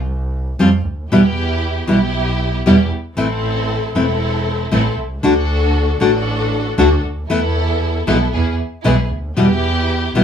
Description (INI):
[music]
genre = tango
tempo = 116 BPM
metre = 4/4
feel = rubato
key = unclear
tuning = A4 = 440 Hz
[part]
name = rich double bass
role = bass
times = 0.0-10.2 s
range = E1 to F2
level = -19 LUFS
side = right 1 dB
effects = none
[part]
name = nylon-string guitar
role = accompaniment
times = 0.6-10.2 s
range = B2 to F#4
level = -14 LUFS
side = left 1 dB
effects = none
[part]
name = warm studio string section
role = stabs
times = 1.1-10.2 s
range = B3 to A4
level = -21 LUFS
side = equal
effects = none
[sound]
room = moderate studio reverb, RT60 0.5 s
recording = band playing live in one room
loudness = -14 LUFS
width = side -8 dB against mid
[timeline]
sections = 0.0-10.2 A section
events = none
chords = 0.0 F5; 1.1 Em; 3.2 Am; 5.2 D; 7.3 Esus4; 8.3 E; 9.4 Em